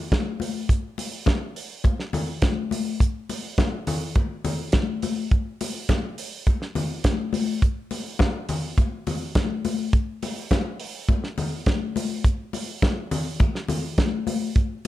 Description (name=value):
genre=disco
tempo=104 BPM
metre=4/4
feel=straight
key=none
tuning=none
part: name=damped 70s drum kit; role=drums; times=0.1-14.9 s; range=hi-hat, kick drum, snare drum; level=-23 LUFS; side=right 1 dB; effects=none
part: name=congas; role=percussion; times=0.1-14.7 s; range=none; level=-28 LUFS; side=left 4 dB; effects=none
room=moderate large studio reverb, RT60 0.8 s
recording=none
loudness=-22 LUFS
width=side -14 dB against mid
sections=0.0-14.9 A section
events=none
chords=none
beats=0.12 | 0.70 1.28 1.85 2.43 | 3.01 3.58 4.16 4.74 | 5.31 5.89 6.47 7.05 | 7.62 8.20 8.78 9.36 | 9.94 10.51 11.09 11.67 | 12.25 12.82 13.40 13.98 | 14.56